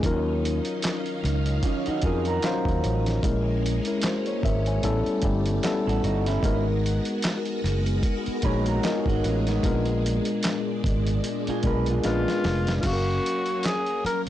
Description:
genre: R&B, neo-soul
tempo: 75 BPM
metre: 4/4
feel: swing 58% on 16ths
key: unclear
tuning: A4 = 440 Hz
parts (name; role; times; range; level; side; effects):
- tine electric piano; accompaniment; 0.0-14.3 s; Gb3 to Ab5; -27 LUFS; left 3 dB; none
- string machine, violins; sustained chords; 0.0-14.3 s; Bb2 to F5; -33 LUFS; equal; ensemble chorus
- fretless electric bass; bass; 0.0-14.1 s; F1 to F2; -26 LUFS; right 1 dB; transformer saturation
- dusty soul sampler-style drum kit; drums; 0.0-14.3 s; crash cymbal, handclaps, hi-hat, kick drum, snare drum; -29 LUFS; right 1 dB; overdrive
- electric guitar through a small old amp; second line; 1.6-12.8 s; Cb4 to Cb5; -31 LUFS; right 7 dB; none
- breathy tenor saxophone; melody; 12.1-14.2 s; F4 to Bb4; -26 LUFS; left 1 dB; none
room: light reverb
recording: blown-out, overdriven recording, overdrive, nothing above 10.5 kHz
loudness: -22 LUFS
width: side -12 dB against mid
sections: 0.0-12.8 A section; 12.8-14.3 B section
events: drum fill 12.0-12.8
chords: 0.0 Ebm9; 3.2 Bbm7b5; 4.8 A9; 6.4 Abm9; 9.6 Bb7b9; 12.8 Gbmaj7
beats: | 0.03 0.83 1.63 2.43 | 3.23 4.03 4.83 5.63 | 6.43 7.23 8.03 8.83 | 9.63 10.43 11.23 12.03 | 12.83 13.63

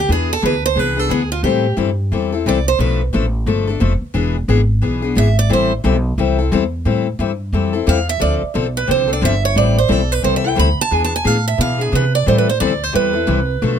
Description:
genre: acoustic string swing (jazz manouche)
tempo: 177 BPM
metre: 4/4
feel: swing 62% on 8ths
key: A minor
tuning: A4 = 441 Hz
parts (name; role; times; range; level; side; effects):
- picked steel-string acoustic guitar; melody; 0.0-3.0, 5.2-5.7, 7.9-13.8 s; F4 to B5; -18 LUFS; right 6 dB; none
- upright bass; bass; 0.0-13.8 s; E1 to C3; -18 LUFS; right 1 dB; none
- picked steel-string acoustic guitar; accompaniment; 0.1-13.8 s; B2 to A4; -19 LUFS; left 7 dB; none
room: little or no reverb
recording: close, detailed microphones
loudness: -14 LUFS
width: side -8 dB against mid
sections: 0.0-6.9 A section; 6.9-13.8 A section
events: steel-string acoustic guitar solo 0.0-13.8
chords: 0.1 E7b13; 1.4 Am7; 2.8 Bm7b5; 4.2 E7; 5.5 Am9; 6.9 Am7; 8.2 Dm7; 9.6 Am7; 10.9 E7b13; 12.3 Am9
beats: | 0.09 0.43 0.77 1.11 | 1.45 1.78 2.12 2.46 | 2.80 3.14 3.47 3.81 | 4.15 4.49 4.83 5.16 | 5.50 5.84 6.18 6.51 | 6.85 7.19 7.53 7.87 | 8.21 8.54 8.88 9.22 | 9.56 9.90 10.24 10.58 | 10.91 11.25 11.59 11.93 | 12.27 12.61 12.95 13.28 | 13.62

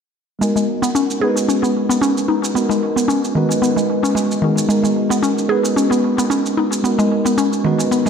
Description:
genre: organic downtempo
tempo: 112 BPM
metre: 4/4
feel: swing 54% on 16ths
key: G# minor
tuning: A4 = 440 Hz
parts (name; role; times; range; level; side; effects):
- mellow tine electric piano; accompaniment; 0.4-8.1 s; G#3 to B4; -19 LUFS; right 1 dB; analog chorus, low-pass filter, ping-pong delay
- mallet-like synth pluck; arpeggios; 0.4-8.1 s; D#3 to G#4; -17 LUFS; left 1 dB; chorus, ping-pong delay
- shaker; drums; 0.4-8.1 s; none; -28 LUFS; right 4 dB; none
room: wet plate reverb, RT60 2.3 s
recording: dreamy mix soaked in reverb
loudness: -15 LUFS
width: side -6 dB against mid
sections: 0.4-8.1 A section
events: filter sweep on tine electric piano 0.4-8.1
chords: 0.4 G#m9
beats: | 0.41 0.95 1.49 2.02 | 2.56 3.09 3.63 4.16 | 4.70 5.24 5.77 6.31 | 6.84 7.38 7.91

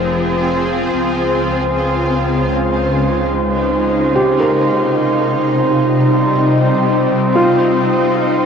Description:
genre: ambient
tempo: free time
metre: none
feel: none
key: unclear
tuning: A4 = 436 Hz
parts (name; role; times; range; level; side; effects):
- shimmering ambient pad; sustained chords; 0.0-8.5 s; C3 to C5; -15 LUFS; left 1 dB; chorus, built-in reverb
- clear chamber double bass section; bass; 0.0-4.1 s; F1 to Db2; -23 LUFS; left 1 dB; none
- glass harmonica; texture; 0.0-8.5 s; C5 to C6; -20 LUFS; right 1 dB; none
- felt-muted upright piano; arpeggios; 4.2-8.5 s; F4 to Bb4; -18 LUFS; right 1 dB; ping-pong delay
room: wet shimmer reverb, RT60 8.8 s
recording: worn, warbling old tape, cassette tape, warbly pitch drift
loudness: -12 LUFS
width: side -6 dB against mid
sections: 0.0-4.1 A section; 4.1-8.5 B section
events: none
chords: 0.0 Fm; 0.9 Db; 4.1 Cm7; 7.3 Ab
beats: free time

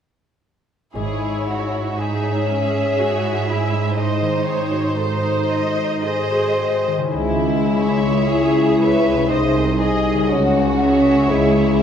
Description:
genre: classical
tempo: 58 BPM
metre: 3/4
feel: uneven beats, rubato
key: C# minor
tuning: A4 = 441 Hz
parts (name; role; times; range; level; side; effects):
- rich studio violin section; melody; 0.9-11.8 s; B#4 to E5; -29 LUFS; left 1 dB; none
- rich studio violin section; second line; 0.9-11.8 s; E4 to B#4; -24 LUFS; equal; none
- clear studio double bass section; bass; 0.9-1.9, 7.1-11.8 s; G#1 to C#2; -25 LUFS; right 4 dB; none
- rich studio cello section; bass; 0.9-11.8 s; B#1 to G#2; -24 LUFS; right 4 dB; none
- rich studio viola section; accompaniment; 1.0-11.8 s; C#4 to D#5; -25 LUFS; right 1 dB; none
- concert harp; arpeggios; 1.0-11.8 s; G#2 to C#5; -25 LUFS; left 5 dB; none
- mellow French horn section; sustained chords; 7.1-11.8 s; G#3 to E4; -17 LUFS; left 2 dB; none
room: wet concert hall reverb, RT60 2.3 s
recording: none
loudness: -16 LUFS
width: side -8 dB against mid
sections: 1.0-7.1 A section; 7.1-11.8 B section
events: none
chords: 1.0 C#m/G#; 4.0 G#7b9; 7.1 C#m; 9.3 G#/B#; 10.3 C#m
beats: | 0.96 1.99 2.99 | 3.97 4.96 6.02 | 7.14 8.29 9.31 | 10.32 11.31

